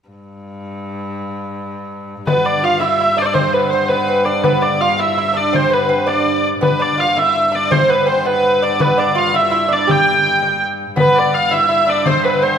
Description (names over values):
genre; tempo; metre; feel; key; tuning
medieval dance; 110 BPM (dotted quarters); 6/8; straight; G mixolydian; A4 = 445 Hz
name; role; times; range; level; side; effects
bright viola da gamba; drone; 0.1-12.6 s; G2; -26 LUFS; left 2 dB; none
warm hurdy-gurdy; melody; 2.3-12.6 s; B4 to G5; -15 LUFS; equal; none
lute; second line; 2.3-12.6 s; B3 to G4; -19 LUFS; right 4 dB; none
frame drum; percussion; 2.3-12.2 s; none; -23 LUFS; left 3 dB; none
edgy shawm; second line; 11.0-12.6 s; B4 to F5; -22 LUFS; left 5 dB; none
room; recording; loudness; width
wet scoring stage reverb, RT60 1.8 s; minimal, uncompressed stereo recording; -13 LUFS; side -8 dB against mid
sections
0.1-2.3 A section; 2.3-11.0 B section; 11.0-12.6 B section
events
none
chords
none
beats
| 0.09 0.63 | 1.18 1.72 | 2.27 2.81 | 3.36 3.90 | 4.45 4.99 | 5.54 6.08 | 6.62 7.17 | 7.71 8.26 | 8.80 9.34 | 9.88 10.43 | 10.97 11.51 | 12.05